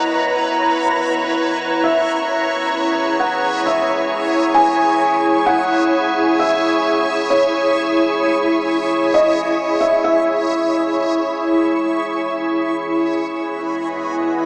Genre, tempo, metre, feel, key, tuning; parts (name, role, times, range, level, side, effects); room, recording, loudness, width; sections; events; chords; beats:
ambient; 66 BPM; 3/4; straight; A4 = 439 Hz
felt-muted upright piano; melody; 0.0-11.8 s; C#5 to G#5; -19 LUFS; equal; diffuse ambient delay
soft additive organ-like pad; sustained chords; 0.0-14.5 s; E4 to A#5; -16 LUFS; equal; ensemble chorus, built-in reverb
backwards swelling texture; texture; 0.0-14.5 s; G#4 to C#6; -25 LUFS; equal; built-in reverb
warm studio double bass section; bass; 12.8-14.5 s; E2; -44 LUFS; equal
wet cathedral reverb, RT60 5.2 s; in a vast, echoing space, small speaker sound; -14 LUFS; side -26 dB against mid
0.0-12.8 A section; 12.8-14.5 B section
0.0 C#m/E; 12.8 Emaj7
0.04 0.95 | 1.86 2.77 3.68 | 4.59 5.50 6.41 | 7.32 8.22 9.13 | 10.04 10.95 11.86 | 12.77 13.68